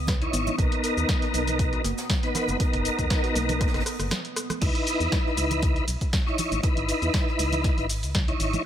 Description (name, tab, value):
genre	deep house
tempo	119 BPM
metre	4/4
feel	swing 54% on 16ths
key	C# dorian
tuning	A4 = 440 Hz
part	deep dark ambient pad	sustained chords	0.0-4.6 s	B3 to D#6	-37 LUFS	right 2 dB	chorus, built-in reverb, sidechain pumping
part	organ-like FM bass	bass	0.0-8.6 s	F#1 to E2	-29 LUFS	equal	none
part	soft round pluck	arpeggios	0.1-4.0 s	A#3 to B4	-36 LUFS	equal	analog chorus, sidechain pumping, tape echo
part	electronic kick drum	drums	0.1-8.3 s	none	-26 LUFS	equal	none
part	jazz brush drum kit	drums	0.1-8.5 s	hi-hat, snare drum	-42 LUFS	right 2 dB	none
part	punchy analog drum machine	drums	0.1-8.6 s	crash cymbal, hi-hat, ride cymbal, rim click, shaker, snare drum	-31 LUFS	equal	none
part	congas	percussion	0.1-8.6 s	none	-35 LUFS	right 4 dB	none
part	tonewheel organ	stabs	0.2-8.6 s	B3 to C#5	-27 LUFS	equal	chorus vibrato, fast rotary speaker, sidechain pumping, analog delay
room	light reverb, digital ambience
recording	none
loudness	-22 LUFS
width	side -10 dB against mid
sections	0.0-4.6 A section; 4.6-8.7 A section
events	drop 0.0-4.6, 4.6-8.7; drum fill 3.6-4.6; break 4.1-4.6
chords	0.0 C#m9; 0.6 Bmaj7; 4.6 C#m9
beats	0.08 | 0.58 1.09 1.59 2.10 | 2.60 3.10 3.61 4.11 | 4.62 5.12 5.63 6.13 | 6.63 7.14 7.64 8.15